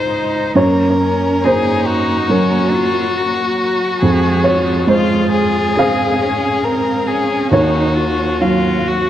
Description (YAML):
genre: neoclassical piano and strings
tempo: 69 BPM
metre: 4/4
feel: rubato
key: unclear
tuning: A4 = 440 Hz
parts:
  - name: rich violin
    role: melody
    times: 0.0-9.1 s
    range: F4 to C5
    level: -18 LUFS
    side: left 5 dB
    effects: tape echo
  - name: rich cello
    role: second line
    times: 0.0-9.1 s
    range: Bb3 to Ab4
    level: -21 LUFS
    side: right 3 dB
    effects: tape echo
  - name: dark upright piano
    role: accompaniment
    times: 0.0-9.1 s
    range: Db2 to F5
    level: -16 LUFS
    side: right 1 dB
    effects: tape echo
  - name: clear chamber string section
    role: sustained chords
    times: 0.0-9.1 s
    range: Gb3 to Bb5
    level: -25 LUFS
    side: equal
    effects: none
room: moderate spring reverb, RT60 2.4 s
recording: echo-heavy mix, cassette tape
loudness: -13 LUFS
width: side -11 dB against mid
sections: 0.0-9.1 A section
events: none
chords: 0.0 Dbadd9; 0.6 Gb; 4.0 Fm; 7.5 Ebmadd9